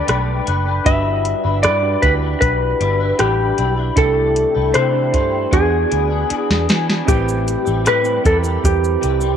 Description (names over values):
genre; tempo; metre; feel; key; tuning
indie pop, bedroom pop; 77 BPM; 4/4; straight; A dorian; A4 = 440 Hz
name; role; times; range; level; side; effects
clean lap steel guitar; melody; 0.0-9.4 s; G4 to E5; -18 LUFS; left 1 dB; wide subtle chorus, tape echo
clean electric guitar; accompaniment; 0.0-9.4 s; A2 to B4; -24 LUFS; left 9 dB; ensemble chorus, warbly pitch drift
soft electric-piano-like synth keys; accompaniment; 0.0-9.4 s; B3 to D5; -24 LUFS; right 11 dB; chorus, cassette tape
vintage muted picked electric bass; bass; 0.1-9.3 s; F#1 to E3; -20 LUFS; equal; tube saturation
soft vintage rhythm box; drums; 0.1-9.4 s; hi-hat, kick drum, rim click, shaker, snare drum; -20 LUFS; equal; none
room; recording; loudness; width
moderate spring reverb, RT60 2.9 s; 1960s-style stereo with parts hard left and right; -14 LUFS; side -8 dB against mid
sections
0.0-7.1 A section; 7.1-9.4 A section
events
drum fill 5.5-7.1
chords
0.0 Gadd9; 0.9 Em7/G; 4.0 C6; 5.5 E7; 7.1 Am7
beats
0.08 | 0.86 1.64 2.41 3.19 | 3.97 4.75 5.53 6.30 | 7.08 7.86 8.64